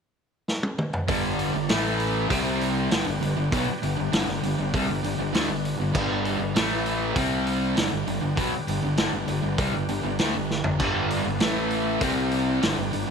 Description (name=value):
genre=classic rock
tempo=99 BPM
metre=4/4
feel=straight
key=G major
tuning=A4 = 441 Hz
part: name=vintage drum kit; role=drums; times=0.5-13.1 s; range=crash cymbal, hi-hat, kick drum, snare drum, toms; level=-28 LUFS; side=equal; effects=none
part: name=tonewheel organ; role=sustained chords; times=1.1-13.1 s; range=B3 to G5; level=-36 LUFS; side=equal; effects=overdrive, fast rotary speaker
part: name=crunchy overdriven guitar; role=riff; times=1.1-13.1 s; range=G2 to C4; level=-29 LUFS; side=right 11 dB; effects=none
part: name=overdriven semi-hollow guitar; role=riff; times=1.1-13.1 s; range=G2 to C4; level=-29 LUFS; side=left 11 dB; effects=none
part: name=thick fuzz guitar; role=riff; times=1.1-13.1 s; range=G2 to C4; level=-29 LUFS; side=left 1 dB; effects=distortion
part: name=fuzz fingered electric bass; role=bass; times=1.1-13.1 s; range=G1 to D2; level=-32 LUFS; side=equal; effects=overdrive
room=light reverb, small room ambience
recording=1960s-style stereo with parts hard left and right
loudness=-22 LUFS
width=side -6 dB against mid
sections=0.0-1.1 A section; 1.1-13.1 B section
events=drum fill 0.5-1.1, 10.5-10.8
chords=0.0 N.C.; 1.1 G; 1.7 A5; 2.3 C5; 2.9 G; 6.6 A5; 7.2 C5; 7.8 G; 11.4 A5; 12.0 C5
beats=0.48 | 1.09 1.70 2.31 2.91 | 3.52 4.13 4.74 5.35 | 5.95 6.56 7.17 7.78 | 8.38 8.99 9.60 10.20 | 10.81 11.41 12.02 12.63